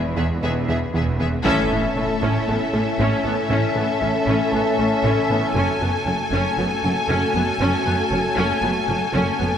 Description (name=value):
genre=cinematic, hybrid orchestral and electronic film score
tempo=117 BPM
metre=4/4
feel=straight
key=unclear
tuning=A4 = 440 Hz
part: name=analog string pad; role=sustained chords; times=0.0-9.6 s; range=G#3 to G#5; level=-28 LUFS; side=equal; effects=ensemble chorus
part: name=plucky analog bass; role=riff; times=0.0-9.6 s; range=E2 to A3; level=-26 LUFS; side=right 1 dB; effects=none
part: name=clear symphonic double bass section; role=bass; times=0.0-9.5 s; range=E1 to A1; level=-28 LUFS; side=right 2 dB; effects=none
part: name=rich symphonic cello section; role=bass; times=0.0-9.5 s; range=E2 to A2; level=-28 LUFS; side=right 2 dB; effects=none
part: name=warm symphonic violin section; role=melody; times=0.2-9.6 s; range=E5 to G#5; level=-26 LUFS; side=left 4 dB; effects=none
part: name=clear symphonic violin section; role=second line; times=0.2-9.6 s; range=G#4 to A4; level=-28 LUFS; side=left 1 dB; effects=none
part: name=clear symphonic viola section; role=accompaniment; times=0.2-9.5 s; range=B3 to C#4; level=-27 LUFS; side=right 1 dB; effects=none
part: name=mellow French horn section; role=sustained chords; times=0.4-9.5 s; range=G#3 to F#4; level=-27 LUFS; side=left 3 dB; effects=none
part: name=impact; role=sound effects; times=1.4-3.5 s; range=none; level=-30 LUFS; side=equal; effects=none
room=wet scoring stage reverb, RT60 2.0 s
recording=none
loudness=-18 LUFS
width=side -8 dB against mid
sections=0.0-1.5 A section; 1.5-9.6 B section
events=band accent 1.5-2.0; impact 1.5-3.5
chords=0.0 E; 1.5 A; 5.6 F#madd9